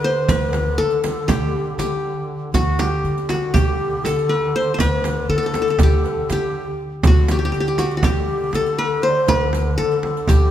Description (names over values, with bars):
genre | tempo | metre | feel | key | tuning
Turkish makam ensemble | 240 BPM (eighths) | 9/8 | straight | D makam hicaz | A4 = 440 Hz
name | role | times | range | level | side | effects
qanun | melody | 0.0-10.5 s | F#4 to C5 | -22 LUFS | left 1 dB | none
breathy low ney | second line | 0.0-10.5 s | F#4 to D5 | -25 LUFS | left 4 dB | none
upright bass | bass | 0.0-10.5 s | D2 to D3 | -21 LUFS | equal | none
mellow duduk | drone | 0.0-10.5 s | D3 | -29 LUFS | right 2 dB | none
frame drum | percussion | 0.3-10.4 s | none | -23 LUFS | right 2 dB | none
riq | percussion | 0.3-10.4 s | none | -32 LUFS | right 5 dB | none
room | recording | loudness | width
moderate recital hall reverb, RT60 1.9 s | recorded in a church or concert hall | -17 LUFS | side -11 dB against mid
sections
0.0-10.5 A section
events
none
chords
none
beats
0.04 | 0.29 0.54 0.79 1.04 1.29 1.54 1.79 2.04 2.29 | 2.54 2.79 3.04 3.29 3.54 3.79 4.04 4.29 4.54 | 4.79 5.04 5.29 5.54 5.79 6.04 6.29 6.54 6.79 | 7.04 7.29 7.54 7.79 8.04 8.29 8.54 8.79 9.04 | 9.29 9.54 9.78 10.03 10.28